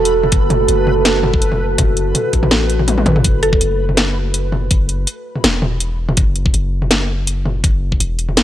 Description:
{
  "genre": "half-time drum and bass",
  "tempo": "164 BPM",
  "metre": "4/4",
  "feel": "swing 54% on 16ths, half-time",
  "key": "F# minor",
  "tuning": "A4 = 442 Hz",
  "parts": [
    { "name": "deep dark ambient pad", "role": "sustained chords", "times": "0.0-3.2 s", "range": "A3 to A4", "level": "-18 LUFS", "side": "right 2 dB", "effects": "chorus, built-in reverb, sidechain pumping" },
    { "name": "long sustained 808-style bass", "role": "bass", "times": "0.0-8.4 s", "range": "E1 to A1", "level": "-18 LUFS", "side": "equal", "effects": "none" },
    { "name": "backwards swelling texture", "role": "texture", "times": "0.0-3.3 s", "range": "B4", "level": "-28 LUFS", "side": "right 2 dB", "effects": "built-in reverb" },
    { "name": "drum and bass drum kit", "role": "drums", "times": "0.1-8.4 s", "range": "hi-hat, snare drum, toms", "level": "-16 LUFS", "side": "equal", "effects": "none" },
    { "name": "electronic kick drum", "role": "drums", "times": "0.3-8.0 s", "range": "none", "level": "-16 LUFS", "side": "equal", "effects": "none" },
    { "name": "mallet-like synth pluck", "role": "melody", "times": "3.4-3.9 s", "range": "A4", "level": "-22 LUFS", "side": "equal", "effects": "chorus, analog delay" }
  ],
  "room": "light reverb",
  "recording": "dry, gritty hardware recording, transformer saturation, cassette tape",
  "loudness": "-13 LUFS",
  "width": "side -12 dB against mid",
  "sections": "0.0-3.2 A section; 3.2-8.4 A section",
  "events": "drop 0.0-3.2, 3.2-8.4; drum fill 2.9-3.2",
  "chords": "0.0 F#m; 3.2 N.C."
}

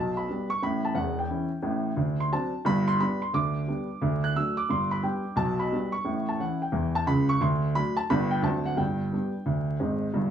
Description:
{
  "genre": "jazz, stride piano",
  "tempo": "176 BPM",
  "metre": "4/4",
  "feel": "swing 63% on 8ths",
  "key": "G major",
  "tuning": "A4 = 440 Hz",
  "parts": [
    { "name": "warm baby grand piano", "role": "solo", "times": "0.0-10.3 s", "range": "E1 to F#6", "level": "-25 LUFS", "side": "right 1 dB", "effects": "none" }
  ],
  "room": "moderate studio reverb, RT60 0.7 s",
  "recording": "vinyl crackle, small room ambience",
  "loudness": "-25 LUFS",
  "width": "side -9 dB against mid",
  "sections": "0.0-10.2 A section",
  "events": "none",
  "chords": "0.0 G/B; 0.6 A7; 2.0 D7; 2.6 G; 3.3 G/D; 4.0 D; 4.7 G; 5.4 G/B; 6.1 A7; 7.4 D7; 8.1 G; 8.4 D7; 8.8 G"
}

